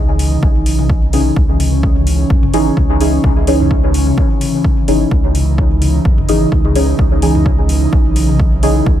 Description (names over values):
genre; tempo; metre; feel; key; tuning
dub techno; 128 BPM; 4/4; swing 55% on 16ths; C# minor; A4 = 440 Hz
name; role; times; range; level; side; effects
airy breathy pad; sustained chords; 0.0-9.0 s; C#3 to D#4; -18 LUFS; equal; chorus, sidechain pumping
round analog bass; bass; 0.0-9.0 s; G#1 to C#2; -15 LUFS; equal; sidechain pumping
electronic hi-hat; drums; 0.2-8.7 s; none; -27 LUFS; left 2 dB; overdrive
electronic toms; percussion; 0.3-8.7 s; none; -24 LUFS; left 3 dB; none
electronic kick drum; drums; 0.4-9.0 s; none; -15 LUFS; equal; overdrive
deep mellow chord stab; stabs; 1.1-8.9 s; E3 to G#4; -18 LUFS; equal; chorus, phaser, sidechain pumping, dub echo
room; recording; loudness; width
light reverb, digital ambience; none; -10 LUFS; side -11 dB against mid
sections
0.0-9.0 A section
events
none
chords
0.0 C#madd9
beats
0.43 0.90 | 1.36 1.83 2.30 2.77 | 3.24 3.71 4.18 4.65 | 5.12 5.58 6.05 6.52 | 6.99 7.46 7.93 8.40 | 8.87